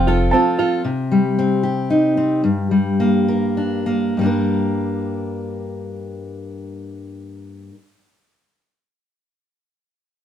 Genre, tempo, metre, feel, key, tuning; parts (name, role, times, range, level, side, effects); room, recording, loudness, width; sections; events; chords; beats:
acoustic folk duo or small band; 96-116 BPM; 3/4; straight; G minor; A4 = 440 Hz
dark upright piano; melody; 0.0-0.7 s; G5 to A5; -20 LUFS; right 3 dB
fingerpicked steel-string acoustic guitar; accompaniment; 0.0-7.8 s; G2 to Bb4; -18 LUFS; left 1 dB
open-back banjo; arpeggios; 0.0-0.9 s; F3 to F4; -22 LUFS; right 4 dB
light reverb; band playing live in one room; -16 LUFS; side -9 dB against mid
0.8-4.2 A section; 4.2-7.9 B section
slowing down 0.8-4.2
0.0 F; 0.8 Cm; 2.4 Gm
0.33 | 0.84 1.36 1.89 | 2.43 2.99 3.57 | 4.17 4.79 5.42 | 6.04 6.66 7.28